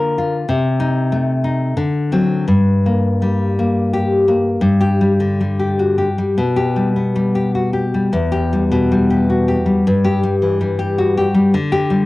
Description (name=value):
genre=romantic piece for solo classical guitar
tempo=82-110 BPM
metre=3/4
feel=rubato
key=G minor, G major from 4.6 s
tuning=A4 = 440 Hz
part: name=nylon-string guitar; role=solo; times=0.0-12.1 s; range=E2 to Bb4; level=-14 LUFS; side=left 1 dB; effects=none
room=wet small room ambience, RT60 0.5 s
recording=home recording on cassette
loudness=-14 LUFS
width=side -18 dB against mid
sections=0.0-4.6 A section; 4.6-12.1 B section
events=none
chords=0.5 Adim/C; 1.8 D7; 2.5 Gm; 4.6 G5; 6.4 G/B; 8.1 Em; 9.9 Em/G; 11.5 G5/D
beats=| 0.48 1.12 1.78 | 2.48 3.21 3.92 | 4.60 5.20 5.78 | 6.36 6.95 7.54 | 8.12 8.71 9.29 | 9.86 10.41 10.98 | 11.54